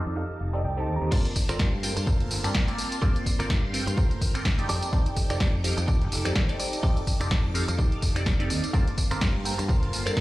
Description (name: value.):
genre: filtered disco house.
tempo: 126 BPM.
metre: 4/4.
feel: swing 57% on 16ths.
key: G minor.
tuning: A4 = 441 Hz.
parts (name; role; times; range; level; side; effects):
funky polysynth comp; accompaniment; 0.0-10.1 s; Bb3 to D6; -33 LUFS; right 1 dB; chorus, phaser, sidechain pumping, low-pass filter.
phased string machine; sustained chords; 0.0-10.2 s; Bb3 to D6; -38 LUFS; equal; ensemble chorus, phaser, sidechain pumping, low-pass filter.
direct-recorded clean electric guitar; riff; 0.0-10.1 s; Eb4 to Bb5; -36 LUFS; right 2 dB; sidechain pumping, low-pass filter.
fingered electric bass; bass; 0.1-10.2 s; F1 to G2; -30 LUFS; equal; sidechain pumping, low-pass filter.
electronic kick drum; drums; 1.1-10.2 s; none; -25 LUFS; equal; none.
punchy analog drum machine; drums; 1.1-10.2 s; crash cymbal, finger snaps, hi-hat, snare drum, tambourine; -31 LUFS; equal; sidechain pumping on cymbals, sidechain pumping on perc, sidechain pumping on hats.
room: digital ambience.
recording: played on a big sound system in a bare room, large studio reverb.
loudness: -23 LUFS.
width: side -17 dB against mid.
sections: 0.0-1.1 A section; 1.1-10.2 B section.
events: clean electric guitar fill 0.0-1.1; filter sweep 0.0-1.1; drop 1.1-10.2.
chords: 0.0 F13; 1.1 Gm11; 4.7 F13; 8.7 Gm11.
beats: 0.17 0.64 | 1.12 1.59 2.07 2.55 | 3.02 3.50 3.98 4.45 | 4.93 5.41 5.88 6.36 | 6.83 7.31 7.79 8.26 | 8.74 9.21 9.69 10.17.